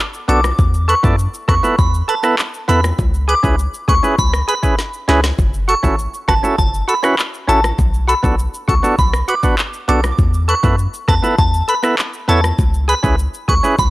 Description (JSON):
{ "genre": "dancehall", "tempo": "100 BPM", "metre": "4/4", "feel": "straight", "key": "unclear", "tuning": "A4 = 441 Hz", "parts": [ { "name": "afro-pop drum kit", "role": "drums", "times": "0.1-13.9 s", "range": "handclaps, hi-hat, kick drum, rim click, shaker, snare drum", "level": "-18 LUFS", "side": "equal", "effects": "none" }, { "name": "glassy synth bell", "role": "melody", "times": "0.3-13.9 s", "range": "A5 to D6", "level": "-19 LUFS", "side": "equal", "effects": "chorus, phaser, tape echo" }, { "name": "percussive tonewheel organ", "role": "accompaniment", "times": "0.3-13.8 s", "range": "B3 to D5", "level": "-18 LUFS", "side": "right 2 dB", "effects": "overdrive" }, { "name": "warm 808-style bass", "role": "bass", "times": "0.3-13.9 s", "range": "F#1 to F#2", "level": "-16 LUFS", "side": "equal", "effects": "none" }, { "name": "bongos", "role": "percussion", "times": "0.3-13.9 s", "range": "none", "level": "-29 LUFS", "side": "left 3 dB", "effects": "none" } ], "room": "little or no reverb", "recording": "dry, gritty hardware recording, cassette tape", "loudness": "-13 LUFS", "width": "side -18 dB against mid", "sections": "0.0-13.9 A section", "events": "drum fill 4.8-5.4", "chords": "0.0 Bm7; 0.6 Esus4; 3.0 C#m7; 5.4 F#m7; 7.8 Bm7; 10.2 Esus4; 12.6 C#m7" }